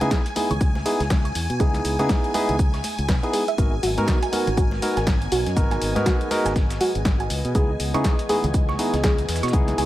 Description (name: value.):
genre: deep house.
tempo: 121 BPM.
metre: 4/4.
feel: swing 59% on 16ths.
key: unclear.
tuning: A4 = 440 Hz.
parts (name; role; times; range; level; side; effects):
barky tine electric piano; stabs; 0.0-9.9 s; B3 to A#4; -26 LUFS; equal; sidechain pumping, low-pass filter, digital delay.
modern bright fingered electric bass; bass; 0.0-9.9 s; G#1 to C#3; -26 LUFS; equal; sidechain pumping.
punchy analog drum machine; drums; 0.0-9.9 s; hi-hat, snare drum; -30 LUFS; left 1 dB; none.
congas; percussion; 0.0-8.9 s; none; -34 LUFS; right 2 dB; none.
string machine, violins; texture; 0.0-9.9 s; G#5; -34 LUFS; left 1 dB; ensemble chorus, sidechain pumping.
soft round pluck; arpeggios; 0.1-9.9 s; F#4 to C#6; -28 LUFS; right 2 dB; chorus, sidechain pumping, digital delay.
dusty soul sampler-style drum kit; drums; 0.1-9.9 s; hi-hat, shaker, snare drum; -38 LUFS; right 1 dB; high-pass filter on perc, high-pass filter on snare, high-pass filter on hats, high-pass filter on room.
electronic kick drum; drums; 0.1-9.7 s; none; -21 LUFS; equal; none.
warm analog pad; sustained chords; 3.6-9.9 s; E3 to D#5; -31 LUFS; right 1 dB; chorus, sidechain pumping.
room: light reverb, digital ambience.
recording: none.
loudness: -19 LUFS.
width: side -15 dB against mid.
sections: 0.0-9.9 A section.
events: filter sweep on synth arpeggio sound 0.0-9.9.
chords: 0.0 C#m7; 3.6 G#m9; 7.3 C#m7.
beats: 0.11 0.61 1.10 | 1.60 2.10 2.59 3.09 | 3.58 4.08 4.58 5.07 | 5.57 6.06 6.56 7.05 | 7.55 8.05 8.54 9.04 | 9.53.